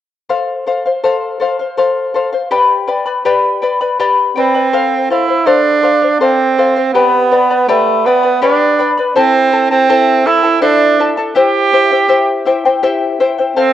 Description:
andean folk; 81 BPM; 3/4; straight; A4 = 443 Hz
charango; accompaniment; 0.3-13.7 s; E4 to B5; -13 LUFS; left 4 dB; cassette tape
clear tenor saxophone; melody; 4.4-13.7 s; A3 to G4; -11 LUFS; right 4 dB; cassette tape
wet spring reverb, RT60 2.3 s; home recording on cassette; -10 LUFS; side -11 dB against mid
0.3-4.7 A section; 4.7-13.7 B section
0.3 F; 2.5 G; 4.7 F; 6.9 G; 9.2 Am; 11.4 C

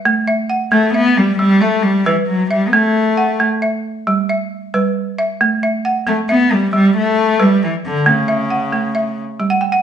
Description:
west african traditional; 90 BPM (dotted quarters); 12/8; straight; A4 = 440 Hz
balafon; arpeggios; 0.0-9.8 s; G3 to G5; -16 LUFS; right 2 dB
warm cello; melody; 0.7-9.2 s; C#3 to B3; -14 LUFS; left 2 dB
wet large studio reverb, RT60 0.9 s; band playing live in one room, nothing above 10.5 kHz; -13 LUFS; side -9 dB against mid
0.0-9.8 A section
balafon fill 9.5-9.8
0.1 A5; 1.4 G; 2.7 A5; 4.1 G; 5.4 A5; 6.7 G; 8.1 A

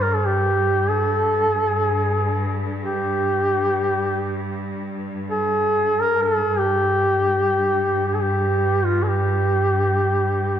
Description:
Arabic maqam ensemble; free time; A4 = 440 Hz
mellow duduk; melody; 0.0-10.6 s; F4 to Bb4; -20 LUFS; equal
clear chamber cello section; drone; 0.0-10.6 s; G2; -24 LUFS; equal
wet concert hall reverb, RT60 2.5 s; dark, warm production; -18 LUFS; side -9 dB against mid
0.0-10.6 A section

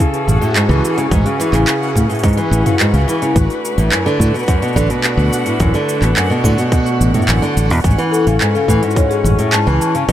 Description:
folktronica; 107 BPM; 4/4; straight; A major; A4 = 439 Hz
muted string quartet; sustained chords; 0.0-10.1 s; A3 to B4; -23 LUFS; equal
nylon-string guitar; arpeggios; 0.0-10.1 s; F#2 to E3; -16 LUFS; equal; ping-pong delay
electronic kick drum; drums; 0.0-10.1 s; -16 LUFS; equal
organic electronic drum kit; drums; 0.0-10.1 s; handclaps, hi-hat, shaker, toms; -21 LUFS; right 1 dB; overdrive
backwards swelling texture; texture; 0.2-10.1 s; F#4 to F#5; -26 LUFS; equal; built-in reverb
fingered electric bass; bass; 0.3-10.1 s; A1 to A2; -14 LUFS; equal
marimba with soft mallets; second line; 8.1-9.9 s; G#4 to A5; -18 LUFS; left 6 dB; ping-pong delay
light reverb; -12 LUFS; side -12 dB against mid
0.0-10.1 A section
0.0 Amaj7; 3.4 Bm7/A; 7.8 Amaj7

